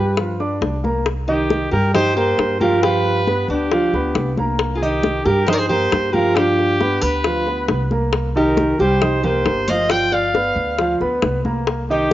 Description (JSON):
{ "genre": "latin, Cuban son and guajira", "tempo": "136 BPM", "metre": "4/4", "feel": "straight", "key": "C minor", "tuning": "A4 = 440 Hz", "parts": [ { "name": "warm trumpet", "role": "melody", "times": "0.0-12.1 s", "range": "G4 to G5", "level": "-22 LUFS", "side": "right 1 dB", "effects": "cassette tape" }, { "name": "nylon-string guitar", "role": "second line", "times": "0.0-12.1 s", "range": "D4 to D5", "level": "-23 LUFS", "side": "left 1 dB", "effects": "none" }, { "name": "dark concert grand piano", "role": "arpeggios", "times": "0.0-12.1 s", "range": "Eb3 to Eb6", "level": "-20 LUFS", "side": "right 1 dB", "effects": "none" }, { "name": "upright bass", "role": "bass", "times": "0.0-12.1 s", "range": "G1 to G2", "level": "-24 LUFS", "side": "equal", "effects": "none" }, { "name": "bongos", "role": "percussion", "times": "0.2-12.1 s", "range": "none", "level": "-23 LUFS", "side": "left 6 dB", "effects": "none" }, { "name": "congas", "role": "percussion", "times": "0.2-12.1 s", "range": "none", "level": "-28 LUFS", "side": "equal", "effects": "none" } ], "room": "light reverb, small room ambience", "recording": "home recording on cassette, nothing above 7.5 kHz", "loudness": "-16 LUFS", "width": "side -14 dB against mid", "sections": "0.0-1.1 A section; 1.1-12.1 B section", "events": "none", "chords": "0.0 G7; 1.1 Cm7; 2.8 G7; 4.6 Cm7; 6.4 G7; 8.1 Cm7; 9.9 G7" }